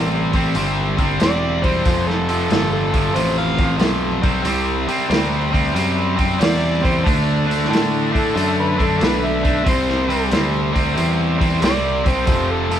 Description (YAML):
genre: blues rock power trio and southern rock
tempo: 92 BPM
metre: 4/4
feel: swing 67% on 8ths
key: unclear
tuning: A4 = 440 Hz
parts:
  - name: sludgy distorted guitar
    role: riff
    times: 0.0-12.8 s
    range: F2 to D4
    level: -19 LUFS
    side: equal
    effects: overdrive
  - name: picked electric bass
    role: bass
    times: 0.0-12.8 s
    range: E1 to A2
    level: -22 LUFS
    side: equal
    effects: none
  - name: vintage drum kit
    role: drums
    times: 0.3-12.8 s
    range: hi-hat, kick drum, snare drum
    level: -21 LUFS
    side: equal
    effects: none
  - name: overdriven harmonica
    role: melody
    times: 1.2-12.8 s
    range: A4 to F5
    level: -23 LUFS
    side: right 1 dB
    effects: none
room: moderate studio reverb, RT60 0.5 s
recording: band playing live in one room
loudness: -16 LUFS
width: side -10 dB against mid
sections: 0.0-12.8 A section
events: none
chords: 0.0 C; 1.8 F; 4.1 C; 7.0 D; 9.7 C; 12.3 F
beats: 0.55 1.20 | 1.85 2.50 3.15 3.79 | 4.44 5.09 5.75 6.40 | 7.05 7.70 8.35 9.00 | 9.66 10.31 10.96 11.62 | 12.27